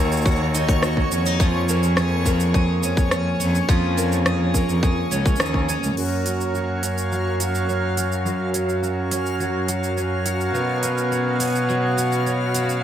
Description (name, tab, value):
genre	folktronica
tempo	105 BPM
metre	4/4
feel	straight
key	F# major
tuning	A4 = 440 Hz
part	picked twelve-string acoustic guitar	arpeggios	0.0-12.8 s	F#2 to G#4	-24 LUFS	right 1 dB	vintage 12-bit sampler grit, low-pass filter, ping-pong delay
part	rich cello	bass	0.0-12.8 s	C#2 to B2	-23 LUFS	equal	none
part	backwards swelling texture	texture	0.0-12.8 s	C#5 to E#6	-31 LUFS	equal	built-in reverb
part	organic electronic drum kit	drums	0.1-12.8 s	cabasa, crash cymbal, hi-hat, rim click	-27 LUFS	right 1 dB	overdrive
part	electronic kick drum	drums	0.3-5.7 s	none	-20 LUFS	equal	overdrive
part	hand-pumped harmonium	sustained chords	6.0-12.8 s	B2 to C#5	-26 LUFS	right 1 dB	none
room	light reverb, digital ambience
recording	none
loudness	-19 LUFS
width	side -10 dB against mid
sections	0.0-6.0 A section; 6.0-12.8 B section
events	band accent 5.4; filter sweep on twelve-string acoustic guitar 6.0-12.8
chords	0.0 D#m; 1.4 A#m7/E#; 6.0 F#; 10.5 Bsus2